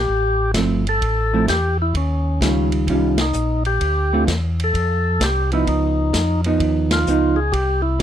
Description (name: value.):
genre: soul jazz organ trio.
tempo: 129 BPM.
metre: 4/4.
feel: swing 66% on 8ths.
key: unclear.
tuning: A4 = 440 Hz.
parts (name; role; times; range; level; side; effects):
percussive tonewheel organ; melody; 0.0-8.0 s; Db4 to A4; -21 LUFS; left 1 dB; slow rotary speaker.
mellow tonewheel organ; bass; 0.0-8.0 s; G1 to F2; -20 LUFS; equal; slow rotary speaker.
warm soul drum kit; drums; 0.5-8.0 s; hi-hat, kick drum, ride cymbal, snare drum; -25 LUFS; equal; none.
vintage hollow-body jazz guitar; accompaniment; 0.6-8.0 s; D3 to F4; -20 LUFS; right 3 dB; none.
room: little or no reverb.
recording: none.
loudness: -16 LUFS.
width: side -10 dB against mid.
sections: 0.0-8.0 A section.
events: band accent 3.1, 6.8.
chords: 0.1 Fmaj7; 2.0 Eb9; 3.8 Dm7; 5.7 Db9.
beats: | 0.09 0.55 1.02 1.49 | 1.95 2.42 2.88 3.35 | 3.81 4.28 4.75 5.21 | 5.68 6.14 6.61 7.07 | 7.54 8.01.